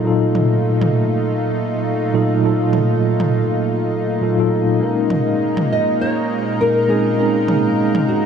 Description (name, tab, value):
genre	sunset chillout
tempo	101 BPM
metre	4/4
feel	swing 58% on 16ths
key	Bb minor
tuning	A4 = 440 Hz
part	mellow tine electric piano	accompaniment	0.0-8.3 s	Bb2 to Bb4	-18 LUFS	moving between left 3 dB and right 4 dB	medium stereo tremolo, auto-pan, digital delay
part	lush unison pad	sustained chords	0.0-8.3 s	Bb2 to Bb4	-20 LUFS	equal	chorus
part	electronic toms	drums	0.3-8.1 s	none	-23 LUFS	right 2 dB	overdrive, low-pass filter on toms
part	nylon-string guitar	melody	5.7-8.3 s	Gb4 to Eb5	-20 LUFS	left 1 dB	digital delay
room	wet plate reverb, RT60 1.7 s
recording	bright 1980s-style digital production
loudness	-15 LUFS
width	side -7 dB against mid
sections	0.0-8.3 A section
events	none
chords	0.0 F7b9/Bb; 4.8 Bbm11